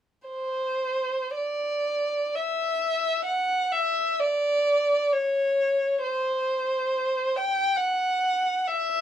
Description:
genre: classical, free, expressive piece for unaccompanied violin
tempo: 55-70 BPM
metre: 3/4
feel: rubato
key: unclear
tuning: A4 = 440 Hz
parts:
  - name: rich violin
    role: solo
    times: 0.3-9.0 s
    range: C5 to G5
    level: -23 LUFS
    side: equal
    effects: none
room: little or no reverb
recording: dark, warm production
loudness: -23 LUFS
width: side -10 dB against mid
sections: 0.3-9.0 A section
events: none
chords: none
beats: | 0.28 1.36 2.34 | 3.25 4.17 5.11 | 6.01 6.90 7.78 | 8.68

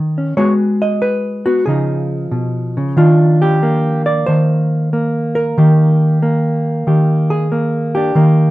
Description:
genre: solo jazz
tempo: 92 BPM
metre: 4/4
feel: swing 69% on 8ths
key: Eb major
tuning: A4 = 440 Hz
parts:
  - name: hollow-body jazz guitar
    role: solo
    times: 0.0-8.5 s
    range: Cb3 to Eb5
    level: -12 LUFS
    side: equal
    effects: none
room: light reverb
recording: minimal, uncompressed stereo recording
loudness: -12 LUFS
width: side -17 dB against mid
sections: 0.0-8.2 A section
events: none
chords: 0.4 Abm7; 1.7 Db9; 3.0 Ebmaj9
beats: | 0.35 1.01 1.66 2.31 | 2.96 3.61 4.26 4.91 | 5.56 6.21 6.86 7.50 | 8.15

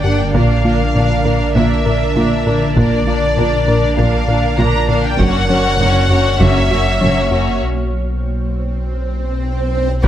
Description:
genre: cinematic, hybrid orchestral and electronic film score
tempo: 99 BPM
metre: 4/4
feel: straight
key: unclear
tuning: A4 = 440 Hz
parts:
  - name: rich symphonic violin section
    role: melody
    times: 0.0-10.1 s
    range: D5 to A#5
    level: -20 LUFS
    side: left 2 dB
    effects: none
  - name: rich studio violin section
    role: second line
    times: 0.0-10.1 s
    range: D4 to D5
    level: -22 LUFS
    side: left 3 dB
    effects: none
  - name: rich symphonic viola section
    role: accompaniment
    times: 0.0-10.1 s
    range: Bb3 to D5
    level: -22 LUFS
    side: right 2 dB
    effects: none
  - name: swarming drone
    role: sustained chords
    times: 0.0-10.1 s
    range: D3 to D5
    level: -22 LUFS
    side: right 1 dB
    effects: built-in reverb
  - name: thumb-piano-like synth pluck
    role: arpeggios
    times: 0.0-10.1 s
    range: F#3 to A#4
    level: -26 LUFS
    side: right 2 dB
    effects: none
  - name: rubbery square bass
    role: riff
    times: 0.0-10.1 s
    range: F#2 to A#3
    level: -20 LUFS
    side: left 2 dB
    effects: none
  - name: dark detuned saw bass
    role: bass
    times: 0.0-10.1 s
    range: F#1 to B1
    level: -20 LUFS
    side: equal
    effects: none
  - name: rich symphonic cello section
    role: bass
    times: 0.0-10.1 s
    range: F#2 to B3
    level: -22 LUFS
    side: right 2 dB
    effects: none
  - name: rich symphonic double bass section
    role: bass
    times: 0.0-10.1 s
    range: F#1 to B1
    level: -22 LUFS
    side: right 2 dB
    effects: none
  - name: taiko ensemble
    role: drums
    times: 0.3-10.1 s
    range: none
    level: -21 LUFS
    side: equal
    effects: none
  - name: swell and sub drop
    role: sound effects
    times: 8.6-10.1 s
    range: none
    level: -23 LUFS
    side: right 2 dB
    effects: none
  - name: dark trombone section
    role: sustained chords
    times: 10.0-10.1 s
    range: none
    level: barely audible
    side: none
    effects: none
  - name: mellow French horn section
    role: sustained chords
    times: 10.0-10.1 s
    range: B3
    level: -28 LUFS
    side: left 1 dB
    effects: none
room: light reverb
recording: close, detailed microphones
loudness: -13 LUFS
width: side -11 dB against mid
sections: 0.0-10.0 A section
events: break 7.6-10.0; swell 8.6-10.0; drum fill 9.1-10.0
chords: 0.3 A#; 5.2 F#; 7.6 N.C.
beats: | 0.34 0.95 1.56 2.16 | 2.77 3.38 3.98 4.59 | 5.19 5.80 6.41 7.01 | 7.62 8.22 8.83 9.44 | 10.04

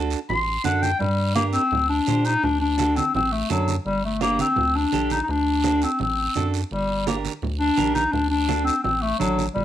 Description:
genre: latin, cumbia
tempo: 168 BPM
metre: 4/4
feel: straight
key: G harmonic minor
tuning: A4 = 440 Hz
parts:
  - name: clean electric guitar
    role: accompaniment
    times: 0.0-9.5 s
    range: D4 to C5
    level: -28 LUFS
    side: right 8 dB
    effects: cassette tape
  - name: rubbery square bass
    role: bass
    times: 0.0-9.6 s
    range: G1 to Bb2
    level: -27 LUFS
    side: equal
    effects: none
  - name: guiro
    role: percussion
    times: 0.1-9.6 s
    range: none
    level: -36 LUFS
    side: right 10 dB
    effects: none
  - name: mellow clarinet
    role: melody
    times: 0.3-9.6 s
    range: F#3 to C6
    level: -21 LUFS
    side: left 2 dB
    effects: cassette tape
  - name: congas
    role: percussion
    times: 0.3-9.6 s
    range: none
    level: -31 LUFS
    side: right 8 dB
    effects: none
room: moderate studio reverb, RT60 0.6 s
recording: home recording on cassette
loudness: -20 LUFS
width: side -11 dB against mid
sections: 0.0-1.0 A section; 1.0-9.6 B section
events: clarinet solo 0.0-1.0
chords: 0.0 D7; 1.0 Gm; 2.4 D; 3.9 Gm; 5.3 D7; 6.7 Gm; 8.1 D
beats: 0.30 0.65 | 1.01 1.36 1.72 2.08 | 2.43 2.79 3.15 3.50 | 3.86 4.21 4.57 4.93 | 5.28 5.64 6.00 6.35 | 6.71 7.06 7.42 7.78 | 8.13 8.49 8.84 9.20 | 9.56

